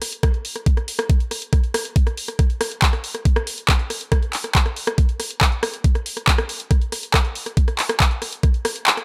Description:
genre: trance.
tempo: 139 BPM.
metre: 4/4.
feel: straight.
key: none.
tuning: none.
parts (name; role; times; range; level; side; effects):
techno drum kit; drums; 0.0-9.0 s; handclaps, hi-hat, rim click; -24 LUFS; equal; overdrive.
electronic kick drum; drums; 0.2-8.5 s; none; -19 LUFS; equal; overdrive.
room: digital ambience.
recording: none.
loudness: -20 LUFS.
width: mono.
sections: 0.0-9.0 A section.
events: kick drops out 8.9.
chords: none.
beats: 0.23 | 0.66 1.10 1.53 1.96 | 2.39 2.82 3.25 3.69 | 4.12 4.55 4.98 5.41 | 5.84 6.28 6.71 7.14 | 7.57 8.00 8.43 8.87.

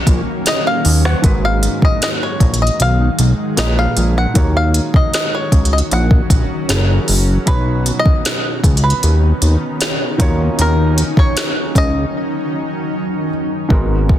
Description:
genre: contemporary R&B.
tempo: 77 BPM.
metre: 4/4.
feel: straight.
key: Eb minor.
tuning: A4 = 441 Hz.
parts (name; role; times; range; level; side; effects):
bluegrass banjo; melody; 0.0-12.9 s; Bb4 to Gb5; -21 LUFS; equal; tape echo.
felt-muted upright piano; accompaniment; 0.0-14.2 s; Ab2 to Db5; -25 LUFS; right 1 dB; none.
granular cloud pad; sustained chords; 0.0-14.2 s; D3 to Gb4; -22 LUFS; equal; built-in reverb.
fat analog bass; bass; 0.1-14.2 s; Gb1 to Eb2; -14 LUFS; equal; none.
smooth R&B drum kit; drums; 0.1-14.2 s; hi-hat, kick drum, rim click, snare drum; -15 LUFS; equal; none.
room: digital ambience.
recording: dense, heavily limited modern master.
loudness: -12 LUFS.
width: side -12 dB against mid.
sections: 0.0-13.7 A section.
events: break 12.1-13.7; hi-hats muted 13.7-14.2.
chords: 0.0 Ebm7; 1.2 Abm7; 3.6 Bb7b9; 4.4 Ebm7; 6.7 Gb7; 7.5 Badd9; 10.2 Ebm7.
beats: 0.46 | 1.24 2.02 2.79 3.57 | 4.35 5.13 5.91 6.69 | 7.47 8.25 9.03 9.81 | 10.59 11.37 12.14 12.92 | 13.70.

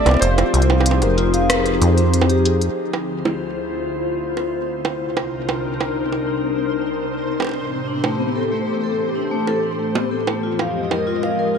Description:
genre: IDM.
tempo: 94 BPM.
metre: 4/4.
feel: straight.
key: D minor.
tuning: A4 = 440 Hz.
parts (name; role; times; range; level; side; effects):
warbly lo-fi synth keys; melody; 0.0-2.4 s; C5 to D5; -24 LUFS; right 1 dB; chorus, ping-pong delay, shimmer reverb.
glassy FM pad; sustained chords; 0.0-11.6 s; C2 to Eb5; -22 LUFS; left 2 dB; ensemble chorus, built-in reverb, shimmer reverb.
vibraphone with soft mallets; arpeggios; 0.0-2.5, 7.9-11.6 s; A3 to F5; -23 LUFS; left 2 dB; digital delay, shimmer reverb.
deep acid bass; bass; 0.1-2.7 s; F1 to F2; -17 LUFS; equal; tube saturation.
organic electronic drum kit; drums; 0.1-11.4 s; bongos, hi-hat, rim click; -23 LUFS; right 4 dB; gated reverb.
flickering grainy texture; texture; 3.9-11.6 s; C4 to C5; -29 LUFS; equal; built-in reverb, ensemble chorus, shimmer reverb.
room: moderate plate reverb, RT60 3.5 s.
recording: bright 1980s-style digital production.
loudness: -17 LUFS.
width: side -6 dB against mid.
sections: 0.0-2.8 A section; 2.8-11.6 B section.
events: none.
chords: 0.2 Fm7; 2.8 Dm7; 5.0 Cm7; 7.6 Am7; 10.4 Fm7.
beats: | 0.22 0.86 1.50 2.13 | 2.77 3.41 4.05 4.69 | 5.33 5.96 6.60 7.24 | 7.88 8.52 9.16 9.79 | 10.43 11.07.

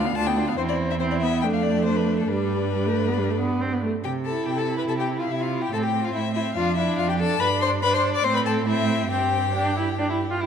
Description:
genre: quick classical-period movement for string quartet.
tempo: 141 BPM.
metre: 4/4.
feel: straight.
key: C major.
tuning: A4 = 440 Hz.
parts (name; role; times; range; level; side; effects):
warm violin; melody; 0.0-10.4 s; A4 to D6; -27 LUFS; left 8 dB; none.
rich violin; second line; 0.0-10.4 s; D4 to D5; -28 LUFS; left 3 dB; none.
rich viola; accompaniment; 0.0-10.5 s; G3 to F4; -26 LUFS; right 2 dB; none.
rich cello; bass; 0.0-10.5 s; D2 to C3; -26 LUFS; right 4 dB; none.
room: moderate scoring stage reverb, RT60 1.4 s.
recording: none.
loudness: -21 LUFS.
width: side -7 dB against mid.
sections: 0.0-4.0 A section; 4.0-10.5 B section.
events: none.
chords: 0.0 Bdim/D; 0.6 C/E; 1.4 Dm/F; 2.3 G; 4.0 C; 5.7 Am; 6.6 Dm/F; 7.4 G5; 8.2 Am; 9.1 Gsus4.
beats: 0.16 | 0.58 1.00 1.43 1.86 | 2.29 2.73 3.17 3.60 | 4.04 4.46 4.89 5.31 | 5.73 6.14 6.56 6.99 | 7.41 7.83 8.25 8.68 | 9.11 9.54 9.97 10.40.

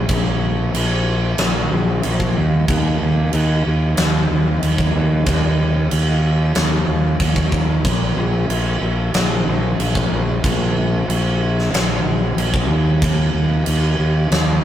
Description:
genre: hard rock.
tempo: 93 BPM.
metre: 4/4.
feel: straight.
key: unclear.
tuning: A4 = 441 Hz.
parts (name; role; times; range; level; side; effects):
fuzz fingered electric bass; bass; 0.0-14.6 s; Bb1 to Eb2; -17 LUFS; equal; overdrive.
huge arena drum kit; drums; 0.1-14.5 s; crash cymbal, kick drum, snare drum; -20 LUFS; equal; none.
room: light reverb.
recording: rough rehearsal-room recording, warm saturation.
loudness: -15 LUFS.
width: side -11 dB against mid.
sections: 0.0-14.6 A section.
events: none.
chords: none.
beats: | 0.09 0.74 1.38 2.03 | 2.68 3.32 3.97 4.62 | 5.26 5.91 6.56 7.20 | 7.85 8.49 9.14 9.79 | 10.44 11.08 11.73 12.38 | 13.02 13.67 14.32.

